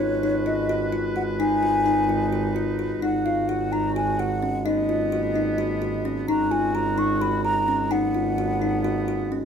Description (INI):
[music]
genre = contemporary instrumental, chamber music in an uneven meter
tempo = 258 BPM (eighths)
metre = 7/8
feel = straight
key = G# dorian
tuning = A4 = 439 Hz
[part]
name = mellow hollow concert flute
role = melody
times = 0.0-9.3 s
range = C#5 to C#6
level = -26 LUFS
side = equal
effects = none
[part]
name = warm woodwind section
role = sustained chords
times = 0.0-9.4 s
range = G#3 to B4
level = -33 LUFS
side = right 2 dB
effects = none
[part]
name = kalimba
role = arpeggios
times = 0.0-9.4 s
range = C#4 to F#4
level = -24 LUFS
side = left 3 dB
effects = none
[part]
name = rich double bass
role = bass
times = 0.0-9.4 s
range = G#1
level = -29 LUFS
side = right 5 dB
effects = none
[sound]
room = light reverb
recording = minimal, uncompressed stereo recording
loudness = -21 LUFS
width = side -7 dB against mid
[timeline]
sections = 0.0-3.0 A section; 3.0-9.4 B section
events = none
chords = 0.0 G#m7; 3.0 D#madd9/G#; 4.7 G#madd9; 6.3 D#madd9/G#; 7.9 G#madd9